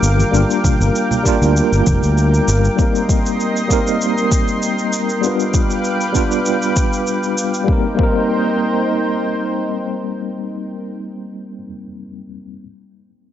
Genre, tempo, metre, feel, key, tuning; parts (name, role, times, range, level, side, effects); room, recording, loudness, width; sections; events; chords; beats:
sunset chillout; 98 BPM; 4/4; swing 53% on 16ths; C minor; A4 = 440 Hz
tine electric piano; accompaniment; 0.0-12.7 s; G3 to B4; -19 LUFS; moving between left 6 dB and right 4 dB; overdrive, fast stereo tremolo, auto-pan, low-pass filter, tape echo
lush unison pad; sustained chords; 0.0-10.9 s; Eb4 to D6; -22 LUFS; equal; chorus
fingered electric bass; bass; 0.0-2.7 s; F1 to D2; -14 LUFS; equal; tube saturation
cabasa; drums; 0.0-7.7 s; -26 LUFS; equal
congas; percussion; 0.2-2.0 s; -23 LUFS; right 1 dB
electronic kick drum; drums; 0.6-8.2 s; -17 LUFS; equal
light reverb; dry, gritty hardware recording, cassette tape, nothing above 7.8 kHz; -14 LUFS; side -11 dB against mid
0.0-7.7 A section; 7.7-10.1 B section
filter sweep on tine electric piano 0.0-7.7
0.0 Gm7; 2.8 Cm7; 5.2 G7; 7.7 Cm7
| 0.33 0.95 1.56 2.17 | 2.78 3.40 4.01 4.62 | 5.23 5.84 6.46 7.07 | 7.68 8.29 8.90 9.52